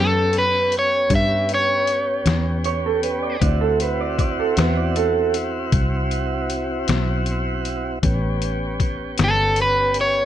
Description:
slow blues; 52 BPM (dotted quarters); 12/8; straight; A mixolydian; A4 = 442 Hz
overdriven semi-hollow guitar; melody; 0.0-10.3 s; A4 to E5; -18 LUFS; equal
tonewheel organ; sustained chords; 0.0-10.3 s; B3 to G4; -26 LUFS; equal; slow rotary speaker
fingered electric bass; bass; 0.0-10.3 s; G1 to G2; -23 LUFS; equal
trip hop sampler-style drum kit; drums; 0.3-10.1 s; hi-hat, kick drum, snare drum; -24 LUFS; left 3 dB
electric slide guitar; second line; 2.7-5.3 s; A4 to D5; -22 LUFS; right 9 dB
light reverb; 1960s-style stereo; -18 LUFS; side -11 dB against mid
0.0-10.3 A section
0.0 A9 (rootless); 3.4 D9; 8.0 A9

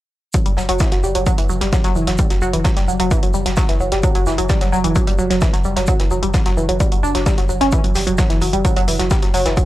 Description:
driving peak-time techno; 130 BPM; 4/4; straight; A4 = 438 Hz
analog pluck; riff; 0.3-9.6 s; E3 to D4; -19 LUFS; equal; chorus, phaser, tube saturation, sidechain pumping, analog delay
electronic hi-hat; drums; 0.3-9.7 s; -27 LUFS; left 1 dB; overdrive
electronic kick drum; drums; 0.3-9.7 s; -17 LUFS; equal
modern studio drum kit; drums; 0.3-9.7 s; hi-hat, shaker, snare drum; -30 LUFS; right 1 dB; sidechain pumping on hats, high-pass filter on hats, high-pass filter on snare, sidechain pumping on perc, high-pass filter on perc, high-pass filter on room
warm sub bass; bass; 0.5-9.6 s; F#1; -23 LUFS; equal; overdrive, sidechain pumping, low-pass filter
small room ambience; dry, gritty hardware recording, transformer saturation, cassette tape; -14 LUFS; side -15 dB against mid
0.3-9.7 A section
0.3 F#5

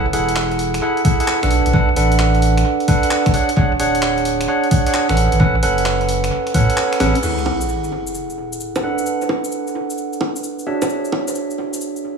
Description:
UK garage, two-step garage; 131 BPM; 4/4; swing 67% on 16ths; F# minor; A4 = 439 Hz
barky tine electric piano; stabs; 0.0-12.2 s; C#4 to F#5; -18 LUFS; right 2 dB; tape echo
saturated sub bass; bass; 0.0-7.1 s; D1 to A2; -18 LUFS; equal
breakbeat sampler-style drum kit; drums; 0.1-12.0 s; bongos, crash cymbal, finger snaps, handclaps, hi-hat, shaker, snare drum; -24 LUFS; equal; analog delay
electronic kick drum; drums; 1.0-6.7 s; -17 LUFS; equal; overdrive
sub drop; sound effects; 7.2-9.1 s; -27 LUFS; left 1 dB
moderate echo chamber reverb, RT60 1.8 s; echo-heavy mix, studio ambience; -15 LUFS; side -5 dB against mid
0.0-7.2 A section; 7.2-12.2 B section
kick drops out 6.8-7.2; drum fill 7.0; band accent 7.0; impact 7.2-9.1
0.0 F#m9; 1.5 Bm7; 3.3 E13 (rootless); 5.2 A69; 7.2 F#m9; 8.8 Bm7; 10.7 E13

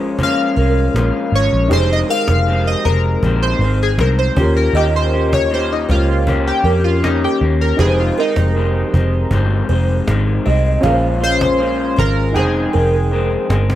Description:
indie pop, bedroom pop; 79 BPM; 4/4; straight; F minor; A4 = 438 Hz
buzzing kalimba; second line; 0.0-12.9 s; Bb4 to F5; -24 LUFS; right 4 dB; ensemble chorus, slapback echo
dark upright piano; accompaniment; 0.0-13.8 s; Db4 to G5; -24 LUFS; right 1 dB; cassette tape
electric guitar through a small old amp; accompaniment; 0.0-13.8 s; F2 to G4; -21 LUFS; left 4 dB; lush chorus, warbly pitch drift
vintage muted picked electric bass; bass; 0.0-13.8 s; F1 to F2; -16 LUFS; equal
cajon; drums; 0.0-13.8 s; -23 LUFS; equal
chorused retro synth keys; melody; 0.2-13.8 s; Eb4 to F5; -19 LUFS; left 1 dB; analog chorus, slapback echo
light reverb, small room ambience; -13 LUFS; side -13 dB against mid
0.0-13.8 A section
synth keys solo 0.0-13.8; drum fill 13.1-13.8
0.0 Bbm7; 1.7 Fm7; 4.4 Eb7; 7.8 Fm7; 10.8 Bbm7; 12.4 Fm7

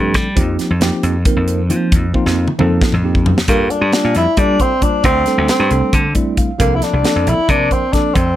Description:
electric jazz fusion; 270 BPM (eighths); 7/8; straight; G dorian from 3.5 s; A4 = 440 Hz
tine electric piano; accompaniment; 0.0-8.2 s; F3 to F5; -19 LUFS; right 1 dB; medium stereo tremolo
slap bass; bass; 0.0-8.4 s; Bb1 to G3; -16 LUFS; equal
modern studio drum kit; drums; 0.1-8.3 s; hi-hat, kick drum, snare drum, toms; -17 LUFS; equal
warm tenor saxophone; melody; 3.5-8.4 s; Bb3 to E4; -16 LUFS; left 1 dB
light reverb; -12 LUFS; side -13 dB against mid
0.0-3.5 A section; 3.5-8.4 B section
drum fill 2.1-3.5; tine electric piano fill 5.9-6.6
0.4 F9sus4; 3.5 Gm9; 5.0 D7sus4; 6.6 C13sus4

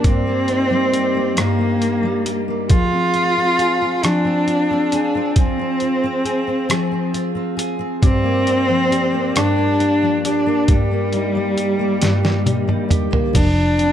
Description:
six-eight pop ballad; 45 BPM (dotted quarters); 6/8; straight; F dorian; A4 = 444 Hz
clear cello; melody; 0.0-13.9 s; G3 to F4; -18 LUFS; equal; tape echo
fingerpicked steel-string acoustic guitar; accompaniment; 0.0-13.9 s; G2 to Ab4; -20 LUFS; equal; double-tracked left and right
trip hop sampler-style drum kit; drums; 0.0-13.9 s; crash cymbal, hi-hat, kick drum, rim click, snare drum, toms; -18 LUFS; equal
vintage muted fingered electric bass; bass; 13.4-13.9 s; F1; -19 LUFS; equal
little or no reverb; dark, warm production; -15 LUFS; side -10 dB against mid
0.0-13.3 A section
drum fill 12.0-13.3
0.0 Eb/G; 2.7 Fm; 8.0 Gm7; 10.7 Eb/G; 13.3 F5

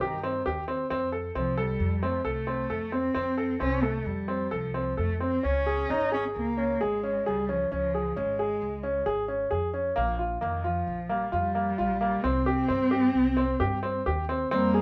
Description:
contemporary instrumental, chamber music in an uneven meter; 132 BPM; 5/4; straight; C phrygian; A4 = 441 Hz
dark cello; melody; 0.0-14.8 s; Eb3 to Eb4; -32 LUFS; equal
bright grand piano; arpeggios; 0.0-14.8 s; Bb3 to A4; -30 LUFS; equal
upright bass; bass; 0.0-14.8 s; Ab1 to G2; -36 LUFS; equal
growling clarinet; second line; 14.5-14.8 s; G3; -29 LUFS; equal
wet studio reverb, RT60 0.8 s; heard from further back in the room; -28 LUFS; mono
0.0-14.5 A section
0.0 Cm; 0.9 F; 5.4 Db5; 10.0 Bb5; 12.2 Cm

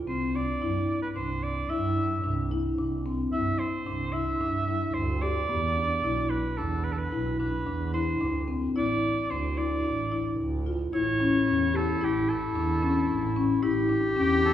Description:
contemporary instrumental, chamber music in an uneven meter; 111 BPM; 5/4; straight; A4 = 436 Hz
clear oboe; melody; 0.1-14.5 s; G4 to E5; -31 LUFS; right 2 dB
marimba with medium mallets; arpeggios; 0.1-14.5 s; B3 to G4; -28 LUFS; left 3 dB
rich double bass; bass; 0.1-14.5 s; A1 to G2; -31 LUFS; right 2 dB
clear clarinet; second line; 10.9-14.5 s; E4 to G4; -29 LUFS; left 1 dB
wet recital hall reverb, RT60 1.7 s; heard from further back in the room; -25 LUFS; side -11 dB against mid
0.0-10.9 A section; 10.9-14.5 B section
0.1 Cadd9; 5.5 E5; 8.2 D5; 10.9 A7

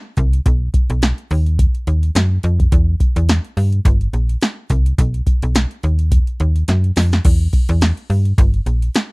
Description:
early-eighties boogie funk; 106 BPM; 4/4; swing 56% on 16ths; A4 = 440 Hz
slap-like FM bass; bass; 0.2-8.9 s; G1 to G2; -15 LUFS; equal
electro analog drum machine; drums; 0.2-9.1 s; crash cymbal, hi-hat, kick drum, snare drum; -15 LUFS; equal
little or no reverb; dry, close 1970s-style studio recording; -14 LUFS; side -30 dB against mid
0.0-7.2 A section; 7.2-9.1 A section
drum fill 6.7-7.2

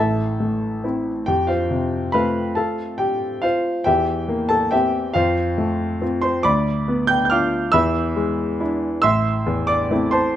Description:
classical, piano waltz; 139 BPM; 3/4; uneven beats, rubato; A minor; A4 = 437 Hz
clear grand piano; solo; 0.0-10.4 s; A1 to G6; -18 LUFS; equal
light reverb; -18 LUFS; side -11 dB against mid
0.0-10.4 A section
0.0 Am; 1.3 F; 3.9 C7/E; 5.2 F; 6.4 Bdim/D; 7.7 E7; 9.0 Am

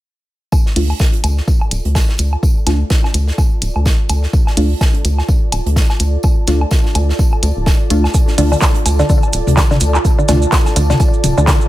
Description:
minimal techno; 126 BPM; 4/4; swing 58% on 16ths; D minor; A4 = 438 Hz
electronic kick drum; drums; 0.5-11.6 s; -13 LUFS; equal; studio reverb
modern studio drum kit; drums; 0.5-11.6 s; hi-hat, snare drum, tambourine; -26 LUFS; right 2 dB; sidechain pumping on hats, high-pass filter on hats, studio reverb, high-pass filter on snare, sidechain pumping on perc, high-pass filter on perc, high-pass filter on room
electronic woodblock and toms; percussion; 0.5-11.5 s; -22 LUFS; left 1 dB; studio reverb, digital delay
airy breathy pad; texture; 0.5-11.7 s; F4 to A5; -24 LUFS; right 2 dB; chorus, sidechain pumping
wavetable chord stab; stabs; 0.8-10.4 s; A3 to F4; -21 LUFS; equal; cassette tape, digital delay
rubbery square bass; bass; 0.8-11.5 s; D1 to D2; -15 LUFS; equal; sidechain pumping
minimal click drum kit; drums; 0.8-11.6 s; handclaps, hi-hat; -18 LUFS; equal; studio reverb
maracas; percussion; 8.1-11.7 s; -26 LUFS; right 5 dB
mallet-like synth pluck; riff; 8.4-11.5 s; D3; -18 LUFS; equal; chorus, sidechain pumping, ping-pong delay
small room ambience; -12 LUFS; side -15 dB against mid
0.5-11.7 A section
fade-in on analog synth pad 0.5-11.7; filter sweep on synth stab 0.5-11.7
0.5 Dm

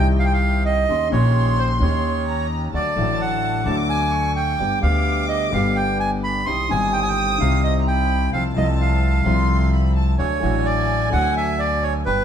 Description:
tango; 129 BPM; 4/4; rubato; A4 = 442 Hz
bandoneon; melody; 0.0-12.2 s; B4 to C6; -22 LUFS; right 4 dB
warm chamber violin section; second line; 0.0-12.2 s; G5 to Eb6; -28 LUFS; equal
warm concert grand piano; accompaniment; 0.0-12.2 s; G1 to G4; -23 LUFS; left 5 dB
bandoneon; stabs; 0.0-12.2 s; A3 to B4; -34 LUFS; right 5 dB
upright bass; bass; 0.0-12.2 s; G1 to Eb2; -22 LUFS; right 1 dB
moderate stone room reverb, RT60 1.2 s; band playing live in one room; -17 LUFS; side -8 dB against mid
0.0-12.2 A section
0.0 Cm; 0.9 Eb7; 2.7 D; 4.6 G; 6.5 Cm; 8.3 F/C; 10.2 D

